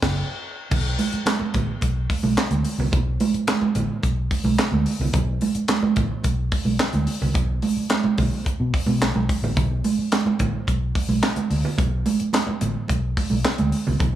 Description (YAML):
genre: funk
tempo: 108 BPM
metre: 4/4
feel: straight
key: unclear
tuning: A4 = 443 Hz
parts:
  - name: vintage muted fingered electric bass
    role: bass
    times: 0.0-14.2 s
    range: F#1 to B2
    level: -23 LUFS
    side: equal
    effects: none
  - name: tight funk drum kit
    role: drums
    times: 0.0-14.1 s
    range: crash cymbal, handclaps, hi-hat, kick drum, snare drum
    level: -24 LUFS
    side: equal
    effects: none
  - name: congas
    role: percussion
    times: 0.7-14.1 s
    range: none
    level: -24 LUFS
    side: right 5 dB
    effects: none
room: light reverb, small room ambience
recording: studio ambience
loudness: -20 LUFS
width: side -12 dB against mid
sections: 0.7-14.2 A section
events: band accent 0.0-0.7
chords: none